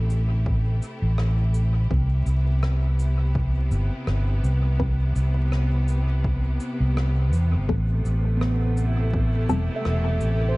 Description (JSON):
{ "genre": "ambient dub", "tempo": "83 BPM", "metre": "4/4", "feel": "swing 55% on 16ths", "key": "unclear", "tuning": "A4 = 440 Hz", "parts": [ { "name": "bright studio string section", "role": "sustained chords", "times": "0.0-10.6 s", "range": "C3 to G4", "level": "-32 LUFS", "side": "left 1 dB", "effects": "none" }, { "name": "fingered electric bass", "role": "bass", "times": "0.0-10.6 s", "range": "E1 to E2", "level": "-21 LUFS", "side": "equal", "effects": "none" }, { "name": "cabasa and rim click", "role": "drums", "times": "0.1-10.4 s", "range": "none", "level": "-38 LUFS", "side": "left 1 dB", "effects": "dub echo" }, { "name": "electronic kick drum", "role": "drums", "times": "0.5-9.3 s", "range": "none", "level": "-27 LUFS", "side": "equal", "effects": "none" }, { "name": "filtered dub chord stab", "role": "stabs", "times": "1.9-9.7 s", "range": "E3 to B4", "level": "-29 LUFS", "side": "left 2 dB", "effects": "phaser, cassette tape, dub echo" }, { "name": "handpan", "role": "arpeggios", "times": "8.4-10.6 s", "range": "A3 to E5", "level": "-30 LUFS", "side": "right 3 dB", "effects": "tape echo" } ], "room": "small room ambience", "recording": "dark, warm production, vinyl crackle, nothing above 10.8 kHz", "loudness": "-20 LUFS", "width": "side -22 dB against mid", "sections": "0.0-10.6 A section", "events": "filter sweep on synth stab 0.0-10.6", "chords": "0.0 Am7; 1.9 Cmaj7; 7.7 Am7", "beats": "0.46 1.18 | 1.91 2.63 3.35 4.08 | 4.80 5.52 6.24 6.97 | 7.69 8.41 9.14 9.86" }